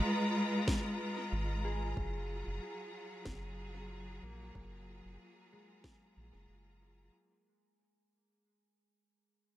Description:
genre	ambient dub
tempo	93 BPM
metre	4/4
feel	swing 55% on 16ths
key	unclear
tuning	A4 = 440 Hz
part	bright studio string section	sustained chords	0.0-7.1 s	F#3 to A#5	-38 LUFS	equal	none
part	concert harp	arpeggios	0.0-7.4 s	G#3 to G#4	-51 LUFS	equal	low-pass filter, dub echo
part	electronic kick drum	drums	0.7-6.0 s	none	-38 LUFS	equal	overdrive, studio reverb
part	electronic snare drum	drums	0.7-6.0 s	none	-42 LUFS	equal	overdrive, studio reverb, dub echo
part	round analog bass	bass	1.3-7.1 s	F#1 to A#1	-40 LUFS	equal	none
room	moderate spring reverb, RT60 2.7 s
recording	none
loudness	-35 LUFS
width	side -14 dB against mid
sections	0.0-7.1 A section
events	fade-out 0.0-7.1; filter sweep on analog synth bass 0.0-7.1; filter sweep on harp 0.0-7.1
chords	0.0 G#m69; 2.0 F#maj9

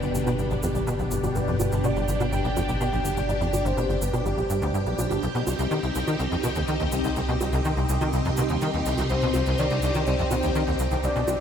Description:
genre	ambient, sequencer-driven space music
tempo	124 BPM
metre	4/4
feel	straight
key	C harmonic minor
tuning	A4 = 440 Hz
part	soft octave-layered synth lead	melody	0.0-4.9, 9.1-11.4 s	G4 to G5	-31 LUFS	left 1 dB	chorus, tremolo, analog delay
part	phased string machine	sustained chords	0.0-11.4 s	B2 to G4	-28 LUFS	left 1 dB	ensemble chorus, phaser
part	tight sequencer bass	riff	0.0-11.4 s	G1 to Eb3	-26 LUFS	equal	ensemble chorus, analog delay
part	analog drone	bass	0.0-11.4 s	G1 to C2	-30 LUFS	equal	chorus
part	cabasa and bongos	percussion	0.0-11.4 s	none	-36 LUFS	right 3 dB	analog delay
part	bubbling stepped-filter texture	texture	0.0-11.4 s	G4 to G5	-44 LUFS	equal	none
room	moderate huge ambient reverb, RT60 8.0 s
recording	in a vast, echoing space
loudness	-22 LUFS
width	side -8 dB against mid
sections	0.0-11.4 A section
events	none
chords	0.0 G; 5.2 Cm

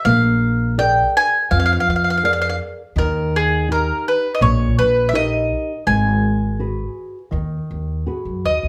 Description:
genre	italian folk, Italian serenade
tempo	82 BPM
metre	4/4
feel	straight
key	G# minor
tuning	A4 = 440 Hz
part	mandolin	melody	0.0-8.7 s	G#4 to G#5	-20 LUFS	equal	none
part	upright bass	bass	0.0-8.7 s	G#1 to F#2	-23 LUFS	equal	none
part	nylon-string guitar	accompaniment	0.1-8.7 s	A#2 to D5	-25 LUFS	equal	none
room	moderate large studio reverb, RT60 0.9 s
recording	band playing live in one room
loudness	-18 LUFS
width	mono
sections	0.0-8.7 A section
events	none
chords	0.1 A#7; 3.0 D#; 5.9 G#m7

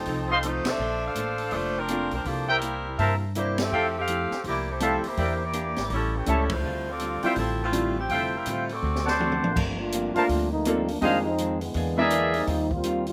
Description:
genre	jazz, big band swing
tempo	164 BPM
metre	4/4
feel	swing 63% on 8ths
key	D minor, G minor from 9.6 s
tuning	A4 = 440 Hz
part	clear saxophone section	melody	0.0-9.4 s	E3 to F5	-31 LUFS	equal	slapback echo
part	clear upright piano	accompaniment	0.0-12.1 s	G3 to A#4	-31 LUFS	equal	none
part	upright bass	bass	0.0-13.1 s	F1 to A2	-34 LUFS	equal	none
part	archtop guitar, miked and amplified	accompaniment	0.1-13.1 s	F2 to C5	-37 LUFS	equal	none
part	open jazz drum kit	drums	0.1-13.1 s	crash cymbal, hi-hat, kick drum, ride cymbal, snare drum, toms	-36 LUFS	equal	none
part	mellow trumpet section	stabs	0.3-12.5 s	Ab4 to C6	-27 LUFS	equal	none
part	muted trombone section	second line	9.4-13.1 s	D3 to F4	-30 LUFS	equal	none
room	little or no reverb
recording	recorded outdoors, with no room sound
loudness	-26 LUFS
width	mono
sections	0.0-9.6 A section; 9.6-13.1 B section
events	band accent 0.6, 3.5, 6.5; drum fill 8.8-9.6; trombone section solo 9.6-13.1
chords	0.0 F7; 0.8 Bbmaj9; 2.3 C7; 3.7 Fmaj9; 5.2 Em7b5; 5.9 A7; 6.6 Dm11; 8.8 D7; 9.6 Gm11; 11.0 Fm7; 11.8 E7#11; 12.5 Eb69

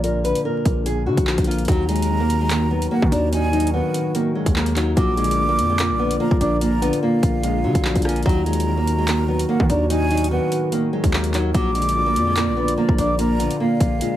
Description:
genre	hip hop, drill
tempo	146 BPM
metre	4/4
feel	half-time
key	Eb harmonic minor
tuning	A4 = 440 Hz
part	nylon-string guitar	melody	0.0-14.2 s	F3 to Cb5	-23 LUFS	equal	none
part	dark concert grand piano	accompaniment	0.0-14.2 s	Bb2 to Eb4	-24 LUFS	left 2 dB	none
part	distorted 808-style bass	bass	0.0-14.0 s	Bb1 to Eb3	-23 LUFS	equal	distortion
part	drill drum kit	drums	0.0-14.1 s	handclaps, hi-hat, kick drum, rim click	-22 LUFS	equal	none
part	breathy mellow concert flute	second line	1.7-14.2 s	F5 to D6	-26 LUFS	right 2 dB	tape echo
part	warbly tape-like pad	sustained chords	1.7-14.2 s	Eb3 to D5	-29 LUFS	equal	chorus, built-in reverb
room	light reverb, studio reverb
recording	vinyl crackle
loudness	-17 LUFS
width	side -12 dB against mid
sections	0.0-1.7 A section; 1.7-14.2 B section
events	break 14.0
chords	0.0 Bb; 1.7 Ebm; 5.0 Bb; 8.3 Ebm; 11.5 Bb

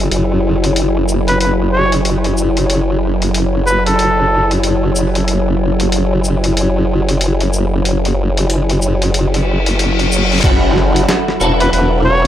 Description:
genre	glitch hop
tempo	93 BPM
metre	4/4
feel	swing 61% on 16ths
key	F# minor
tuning	A4 = 440 Hz
part	warbly tape-like pad	sustained chords	0.0-12.3 s	F#3 to C#5	-19 LUFS	equal	chorus, built-in reverb, sidechain pumping
part	formant-sweep wobble bass	bass	0.0-12.3 s	E1 to F#1	-14 LUFS	equal	chorus, tube saturation
part	boom bap sampler-style drum kit	drums	0.1-11.9 s	crash cymbal, hi-hat, shaker, snare drum	-20 LUFS	left 1 dB	small room ambience
part	warm trumpet	melody	1.3-4.5, 11.6-12.3 s	A4 to C#5	-17 LUFS	equal	dub echo
part	reverse cymbal and impact	sound effects	9.3-12.3 s	none	-21 LUFS	left 3 dB	none
part	clean electric guitar	stabs	10.4-12.3 s	C#4 to A4	-17 LUFS	left 1 dB	ensemble chorus, sidechain pumping, dub echo
part	electronic kick drum	drums	10.4-10.6 s	none	-13 LUFS	equal	small room ambience
room	digital ambience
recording	none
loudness	-12 LUFS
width	side -11 dB against mid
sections	0.0-10.4 A section; 10.4-12.3 B section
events	reverse cymbal 9.3-10.4; drop 10.4-12.3; impact 10.4-12.3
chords	0.0 F#7(no3); 10.4 F#m7

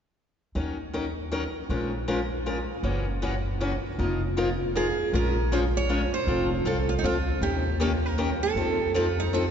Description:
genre	acoustic string swing (jazz manouche)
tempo	157 BPM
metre	3/4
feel	swing 63% on 8ths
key	Bb harmonic minor from 5.1 s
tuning	A4 = 445 Hz
part	picked steel-string acoustic guitar	accompaniment	0.6-9.4 s	Db3 to Bb4	-27 LUFS	left 2 dB	none
part	upright bass	bass	0.6-9.5 s	F1 to F2	-29 LUFS	equal	none
part	picked steel-string acoustic guitar	melody	4.8-9.5 s	Eb4 to Db5	-28 LUFS	right 5 dB	none
room	wet cathedral reverb, RT60 6.7 s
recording	recorded in a church or concert hall, nothing above 7.7 kHz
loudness	-24 LUFS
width	side -8 dB against mid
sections	0.5-5.1 A section; 5.1-9.5 B section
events	none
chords	0.5 Ebm7; 1.7 Bbm7; 2.8 Gb7; 4.0 F7sus4; 5.1 Bbm7; 6.3 F; 7.4 Eb7; 8.6 F7

